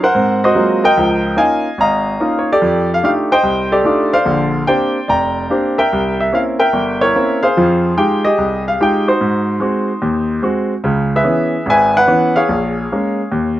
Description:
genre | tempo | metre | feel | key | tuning
jazz | 146 BPM | 4/4 | swing 67% on 8ths | F minor | A4 = 440 Hz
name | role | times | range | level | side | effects
clear grand piano | solo | 0.0-13.6 s | F1 to Bb5 | -12 LUFS | equal | none
room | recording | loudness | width
little or no reverb | close, detailed microphones | -12 LUFS | side -14 dB against mid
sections
0.0-10.8 A section; 10.8-13.6 B section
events
none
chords
0.1 Ab13; 1.0 Db69; 2.6 F13; 4.3 Bb69; 5.9 C7b9; 7.6 Fm9; 9.2 Ab7; 10.8 C#m7; 12.5 A#m7

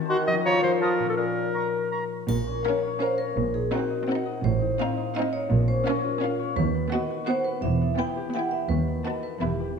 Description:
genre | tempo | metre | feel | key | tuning
cinematic, playful, whimsical film cue | 168 BPM | 3/4 | straight | Bb minor, E minor from 6.6 s | A4 = 444 Hz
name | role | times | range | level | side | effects
concert harp | arpeggios | 0.0-9.8 s | A2 to G5 | -29 LUFS | left 8 dB | none
small flute group | second line | 0.1-2.0 s | C6 to Eb6 | -36 LUFS | left 1 dB | none
warm clarinet | second line | 0.1-1.9 s | Gb4 to Eb5 | -26 LUFS | equal | none
warm oboe | second line | 0.1-2.0 s | Gb5 to Bb5 | -34 LUFS | right 2 dB | none
mellow bassoon | accompaniment | 0.1-1.5 s | Bb2 to F3 | -27 LUFS | right 1 dB | none
vibraphone with medium mallets | melody | 2.3-9.8 s | Gb4 to G5 | -30 LUFS | right 4 dB | none
rich studio double bass section | bass | 2.3-9.7 s | E1 to D#2 | -28 LUFS | right 5 dB | none
warm chamber cello section | bass | 2.3-9.7 s | D#2 to Bb2 | -29 LUFS | right 3 dB | none
triangle | percussion | 2.3-3.0 s | none | -46 LUFS | left 3 dB | none
rich chamber violin section | second line | 2.6-9.7 s | Db4 to Bb4 | -34 LUFS | left 1 dB | none
rich studio violin section | melody | 2.7-9.7 s | F5 to B5 | -40 LUFS | left 3 dB | none
rich chamber viola section | accompaniment | 2.7-9.7 s | B3 to Db4 | -32 LUFS | right 2 dB | none
room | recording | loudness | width
wet recital hall reverb, RT60 1.8 s | none | -23 LUFS | side -6 dB against mid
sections
0.0-2.3 A section; 2.3-9.8 B section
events
none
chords
0.1 Cdim/Eb; 0.5 Bbm/F; 0.8 F7; 1.2 Bbm; 3.4 Cm7b5/Bb; 4.4 F7/A; 5.5 Bbm; 6.6 B/D#; 7.6 Em; 8.7 B7/D#; 9.4 Em

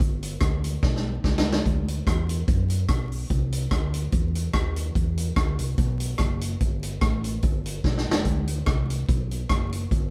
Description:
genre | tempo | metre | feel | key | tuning
ska | 145 BPM | 4/4 | swing 55% on 8ths | D mixolydian | A4 = 440 Hz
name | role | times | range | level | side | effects
fingered electric bass | bass | 0.0-10.1 s | E1 to F#2 | -29 LUFS | equal | none
swinging big-band drum kit | drums | 0.0-10.0 s | hi-hat, kick drum, rim click, snare drum | -27 LUFS | equal | none
room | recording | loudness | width
wet studio reverb, RT60 0.5 s | band playing live in one room, vinyl crackle | -25 LUFS | mono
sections
0.0-1.6 A section; 1.6-10.1 B section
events
drum fill 0.8-1.6, 7.8-8.3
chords
none

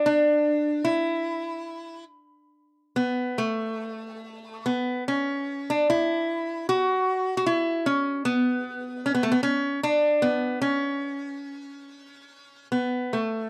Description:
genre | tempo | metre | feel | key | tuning
celtic folk | 68-77 BPM | 3/4 | rubato | unclear | A4 = 444 Hz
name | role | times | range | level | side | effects
lap resonator guitar | solo | 0.0-13.5 s | A3 to F#4 | -26 LUFS | equal | none
room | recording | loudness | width
light reverb | dry, close 1970s-style studio recording | -26 LUFS | mono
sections
0.0-13.1 A section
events
none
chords
none

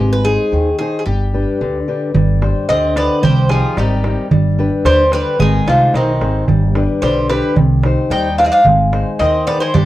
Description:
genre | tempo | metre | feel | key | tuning
greek folk, Greek bouzouki band | 111 BPM | 2/4 | straight | G phrygian dominant | A4 = 440 Hz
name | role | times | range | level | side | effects
Greek bouzouki | melody | 0.0-9.9 s | Eb4 to G5 | -16 LUFS | equal | none
fingerpicked old ladder-braced acoustic guitar | accompaniment | 0.0-9.9 s | C3 to C5 | -19 LUFS | left 3 dB | none
upright bass | bass | 0.0-9.9 s | G1 to Eb2 | -17 LUFS | equal | none
darbuka | percussion | 2.2-9.9 s | none | -17 LUFS | right 4 dB | none
Greek bouzouki | second line | 2.7-9.9 s | C3 to Eb4 | -24 LUFS | right 1 dB | none
room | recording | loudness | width
moderate studio reverb, RT60 0.5 s | worn, warbling old tape, cassette tape, warbly pitch drift | -12 LUFS | side -15 dB against mid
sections
0.0-2.1 A section; 2.1-9.9 B section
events
none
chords
0.0 Ab; 1.1 G; 2.1 Gsus4; 3.2 Cm; 4.3 G; 5.4 Ab; 6.5 G; 7.6 Cm; 8.7 Ab

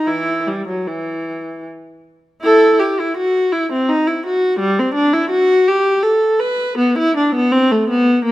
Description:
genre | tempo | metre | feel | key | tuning
classical, baroque-style suite movement for unaccompanied viola | 74-87 BPM | 3/4 | rubato | E minor | A4 = 440 Hz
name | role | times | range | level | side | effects
rich viola | solo | 0.0-8.3 s | E3 to B4 | -14 LUFS | equal | none
room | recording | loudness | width
moderate recital hall reverb, RT60 1.5 s | close, detailed microphones | -13 LUFS | side -16 dB against mid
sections
0.0-2.4 A section; 2.4-8.3 B section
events
none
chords
none

